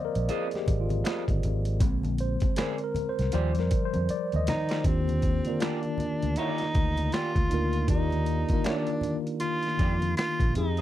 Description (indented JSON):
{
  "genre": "R&B, neo-soul",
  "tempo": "79 BPM",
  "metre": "4/4",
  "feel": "swing 62% on 16ths",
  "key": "Eb major",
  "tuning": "A4 = 439 Hz",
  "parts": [
    { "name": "mellow tine electric piano", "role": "accompaniment", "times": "0.0-10.8 s", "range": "D3 to F5", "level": "-30 LUFS", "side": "left 2 dB", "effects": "medium stereo tremolo" },
    { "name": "fingered electric bass", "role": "bass", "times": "0.2-10.8 s", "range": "Ab1 to Eb3", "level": "-28 LUFS", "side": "equal", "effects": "none" },
    { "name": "boom bap sampler-style drum kit", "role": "drums", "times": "0.2-10.8 s", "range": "finger snaps, hi-hat, kick drum, snare drum", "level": "-28 LUFS", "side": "equal", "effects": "none" },
    { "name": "electric guitar through a small old amp", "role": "second line", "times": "0.3-10.8 s", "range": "F4 to Eb5", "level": "-34 LUFS", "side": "right 4 dB", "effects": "wide subtle chorus" },
    { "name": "congas", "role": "percussion", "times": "0.3-10.8 s", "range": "none", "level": "-39 LUFS", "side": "right 2 dB", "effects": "none" },
    { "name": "warm tenor saxophone", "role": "melody", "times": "4.5-10.8 s", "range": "C4 to F4", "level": "-31 LUFS", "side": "right 1 dB", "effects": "none" }
  ],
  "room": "little or no reverb",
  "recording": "dry, close 1970s-style studio recording",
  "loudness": "-25 LUFS",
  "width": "side -13 dB against mid",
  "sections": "0.0-4.8 A section; 4.8-10.8 B section",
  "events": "tine electric piano solo 0.0-4.8; drum fill 4.1-4.8",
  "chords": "0.0 Ab6; 1.8 Bb9; 3.3 Ebmaj9",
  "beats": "0.29 1.05 | 1.81 2.57 3.33 4.08 | 4.84 5.60 6.36 7.12 | 7.88 8.64 9.40 10.16"
}